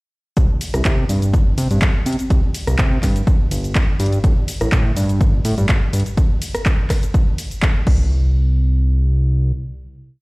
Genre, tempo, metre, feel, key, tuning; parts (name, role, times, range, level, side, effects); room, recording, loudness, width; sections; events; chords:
piano house; 124 BPM; 4/4; swing 53% on 16ths; A4 = 440 Hz
fat analog bass; bass; 0.4-9.5 s; G1 to C3; -16 LUFS; equal; sidechain pumping
electronic kick drum; drums; 0.4-8.0 s; -16 LUFS; equal; overdrive
house drum kit; drums; 0.4-8.0 s; crash cymbal, handclaps, hi-hat, ride cymbal, rim click, shaker; -25 LUFS; equal
little or no reverb; played on a big sound system in a bare room, large studio reverb; -15 LUFS; side -25 dB against mid
0.4-8.1 drop; 8.1-10.2 final hit
drop 0.4-8.1